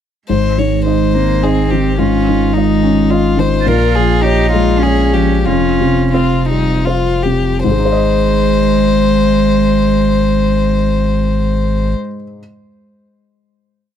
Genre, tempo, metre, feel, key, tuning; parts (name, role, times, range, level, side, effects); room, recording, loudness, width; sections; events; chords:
neoclassical piano and strings; 75-109 BPM; 3/4; rubato; Ab major; A4 = 440 Hz
warm violin; melody; 0.3-11.9 s; Eb4 to Db5; -17 LUFS; left 7 dB
rich cello; second line; 0.3-11.9 s; Ab3 to F4; -17 LUFS; right 4 dB
felt-muted upright piano; accompaniment; 0.3-12.4 s; F2 to Eb5; -17 LUFS; left 1 dB
saturated sub bass; bass; 0.3-11.9 s; F1 to Bb1; -17 LUFS; equal
small room ambience; dry, close 1970s-style studio recording; -11 LUFS; side -9 dB against mid
0.3-7.6 theme; 7.6-12.4 final chord
slowing down 2.8-7.6
0.3 Ab; 2.0 Dbadd9/Ab; 3.7 Bbm7; 5.5 Fsus2; 7.6 Ab